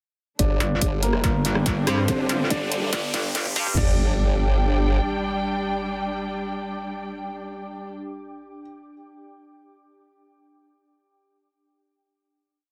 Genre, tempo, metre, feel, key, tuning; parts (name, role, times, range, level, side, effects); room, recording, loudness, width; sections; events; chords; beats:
heavy wobble dubstep; 142 BPM; 4/4; half-time; G minor; A4 = 442 Hz
dark baby grand piano; melody; 0.4-8.6 s; Bb3 to D5; -33 LUFS; equal; low-pass filter, digital delay
muted studio string section; sustained chords; 0.4-7.9 s; D3 to G5; -32 LUFS; equal; sidechain pumping
formant-sweep wobble bass; bass; 0.4-5.0 s; G1; -25 LUFS; equal; chorus, overdrive
dubstep drum kit; drums; 0.4-3.9 s; crash cymbal, kick drum, toms; -29 LUFS; equal; overdrive
dubstep drum kit; drums; 0.4-3.6 s; hi-hat, rim click; -29 LUFS; equal
riser and impact; sound effects; 1.7-8.7 s; -34 LUFS; equal
ethereal airy pad; texture; 0.4-7.9 s; D4 to D6; -36 LUFS; equal; ensemble chorus, built-in reverb, sidechain pumping
metallic wobble bass; bass; 0.6-3.8 s; G1 to G2; -27 LUFS; equal; distortion, chorus, overdrive
digital ambience; high-pass filter; -24 LUFS; mono
0.4-3.8 build; 3.8-7.2 final chord
build-up 0.4-3.8; filter sweep on grand piano 0.4-3.8; filter sweep 0.4-3.8; riser 1.7-3.8; drum fill 2.1-3.8
0.4 G5
| 0.39 0.81 1.24 1.66 | 2.08 2.50 2.93 3.35 | 3.77 4.20 4.62 5.04 | 5.46 5.88 6.31 6.73